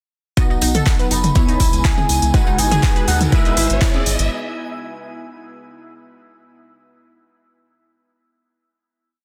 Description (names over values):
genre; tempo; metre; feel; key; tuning
progressive house; 122 BPM; 4/4; straight; E major; A4 = 440 Hz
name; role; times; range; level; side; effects
expressive synth lead; melody; 0.4-4.0 s; E5 to B5; -27 LUFS; equal; chorus, dub echo
airy breathy pad; sustained chords; 0.4-4.3 s; C#3 to B4; -30 LUFS; equal; chorus, sidechain pumping
analog pluck; arpeggios; 0.4-4.0 s; D#4 to B4; -30 LUFS; equal; chorus, sidechain pumping, dub echo
unison pluck; stabs; 0.4-4.3 s; G#3 to D#5; -30 LUFS; equal; phaser, sidechain pumping, dub echo
tight sequencer bass; bass; 0.4-4.3 s; F#1 to D#2; -24 LUFS; equal; sidechain pumping
deep house drum kit; drums; 0.4-4.3 s; handclaps, hi-hat; -26 LUFS; equal; sidechain pumping on hats
electronic kick drum; drums; 0.4-3.9 s; none; -18 LUFS; equal; none
tambourine; percussion; 0.4-4.3 s; none; -32 LUFS; equal; none
riser; sound effects; 1.8-4.3 s; none; -32 LUFS; equal; none
twinkling granular texture; texture; 1.2-4.3 s; G#5; -38 LUFS; equal; built-in reverb, sidechain pumping
electronic toms and congas; percussion; 0.7-4.0 s; none; -23 LUFS; equal; sidechain pumping on toms, sidechain pumping on perc
room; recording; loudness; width
light reverb, digital ambience; dense, heavily limited modern master; -17 LUFS; mono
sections
0.4-4.3 build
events
build-up 0.4-4.3; filter sweep on analog synth pad 0.4-4.3; filter sweep on analog synth lead 0.4-4.3; riser 1.8-4.3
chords
0.4 B; 1.4 C#m7; 2.3 G#m7; 3.3 E/G#